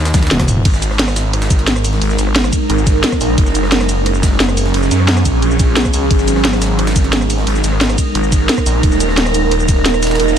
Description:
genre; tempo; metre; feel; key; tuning
dark technical drum and bass; 176 BPM; 4/4; straight; unclear; A4 = 437 Hz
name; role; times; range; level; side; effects
growling FM bass; bass; 0.0-0.6 s; E1 to D#2; -17 LUFS; equal; none
snarling distorted saw bass; bass; 0.1-10.4 s; D#1 to F#2; -16 LUFS; equal; distortion, sidechain pumping
drum and bass drum kit; drums; 0.1-10.3 s; cabasa, hi-hat, ride cymbal, rim click, snare drum, toms; -17 LUFS; equal; none
electronic kick drum; drums; 0.1-9.8 s; none; -15 LUFS; equal; overdrive
jungle sampler-style drum kit; drums; 0.1-10.4 s; hi-hat, snare drum; -27 LUFS; equal; high-pass filter on snare, high-pass filter on hats, high-pass filter on room
swarming drone; sustained chords; 1.5-10.4 s; F#3 to D#5; -17 LUFS; right 2 dB; built-in reverb, sidechain pumping
noise sweep; sound effects; 10.3-10.4 s; none; -26 LUFS; right 1 dB; none
room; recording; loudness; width
light reverb; none; -11 LUFS; side -8 dB against mid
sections
0.7-10.4 A section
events
drum fill 0.1-0.7; drop 0.7-10.4; noise sweep 10.3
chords
0.0 N.C.; 0.7 G#sus2; 3.4 F#; 6.1 G#sus2; 8.8 D#5

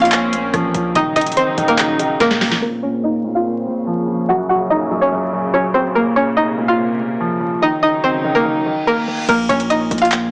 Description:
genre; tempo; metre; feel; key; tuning
hip hop, trap; 144 BPM; 4/4; half-time; Bb minor; A4 = 440 Hz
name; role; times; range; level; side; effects
string-like resonator pluck; melody; 0.0-10.3 s; Bb3 to Gb5; -19 LUFS; equal; chorus, low-pass filter
dark baby grand piano; accompaniment; 0.0-10.3 s; Gb2 to Bb3; -23 LUFS; equal; low-pass filter
warm studio string section; sustained chords; 0.0-9.3 s; Bb2 to Eb4; -25 LUFS; equal; low-pass filter
hard-hitting 808-style bass; bass; 0.0-2.6, 9.3-10.3 s; Eb1 to Bb1; -30 LUFS; equal; none
booming analog drum machine; drums; 0.1-2.6, 9.3-10.2 s; crash cymbal, handclaps, hi-hat, rim click, snare drum; -23 LUFS; equal; none
reverse cymbal; sound effects; 8.6-9.3 s; none; -31 LUFS; equal; none
room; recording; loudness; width
moderate plate reverb, RT60 1.3 s; blown-out, overdriven recording, vinyl crackle, overdrive, small speaker sound; -17 LUFS; mono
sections
0.0-2.6 A section; 2.6-9.3 B section; 9.3-10.3 C section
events
drum fill 2.2-2.6; filter sweep 2.6-9.3; reverse cymbal 8.6-9.3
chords
0.0 Bbmadd9; 1.0 Ebm7; 2.6 Bbmadd9; 4.3 Gb; 6.0 Bbmadd9; 7.6 Ebm7; 9.3 Bbm

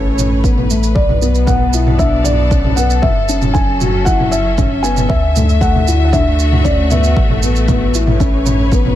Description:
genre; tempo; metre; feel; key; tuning
piano and strings electronica; 116 BPM; 4/4; straight; B minor; A4 = 439 Hz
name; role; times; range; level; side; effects
felt-muted upright piano; melody; 0.0-8.7 s; A4 to G#5; -20 LUFS; equal; digital delay
clear studio string section; sustained chords; 0.0-9.0 s; A2 to E5; -22 LUFS; left 2 dB; none
felt-muted upright piano; riff; 0.0-8.9 s; A3 to F#4; -19 LUFS; left 2 dB; digital delay
warm sub bass; bass; 0.0-9.0 s; F#1 to D2; -16 LUFS; equal; sidechain pumping
electronic toms and shaker; drums; 0.2-9.0 s; none; -20 LUFS; right 1 dB; none
electronic kick drum; drums; 0.4-8.8 s; none; -16 LUFS; equal; none
room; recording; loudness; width
light reverb, small room reverb; none; -11 LUFS; side -12 dB against mid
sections
0.0-9.0 A section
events
none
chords
0.0 Aadd9; 1.0 Bm7; 3.0 F#m7; 5.1 Dadd9; 7.2 Aadd9

